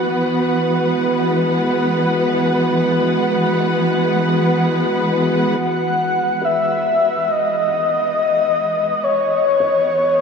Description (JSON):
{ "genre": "ambient", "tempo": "free time", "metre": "none", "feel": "none", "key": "E major", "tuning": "A4 = 440 Hz", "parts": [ { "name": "muted studio string section", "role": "sustained chords", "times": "0.0-10.2 s", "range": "E3 to F#5", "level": "-18 LUFS", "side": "equal", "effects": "shimmer reverb" }, { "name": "felt-muted upright piano", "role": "arpeggios", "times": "0.0-10.2 s", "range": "B4 to D#5", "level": "-33 LUFS", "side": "equal", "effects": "none" }, { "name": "glass harmonica", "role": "texture", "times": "0.0-5.6 s", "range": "F#4 to F#5", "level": "-25 LUFS", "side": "equal", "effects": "shimmer reverb" }, { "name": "breathy flute-like synth lead", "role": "melody", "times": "5.6-10.2 s", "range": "C#5 to F#5", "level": "-16 LUFS", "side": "left 2 dB", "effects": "analog chorus, shimmer reverb, ping-pong delay" } ], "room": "wet cathedral reverb, RT60 7.5 s", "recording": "dark, warm production", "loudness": "-15 LUFS", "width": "side -6 dB against mid", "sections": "0.0-5.6 A section; 5.6-10.2 B section", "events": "none", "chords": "0.0 Emaj7", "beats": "free time" }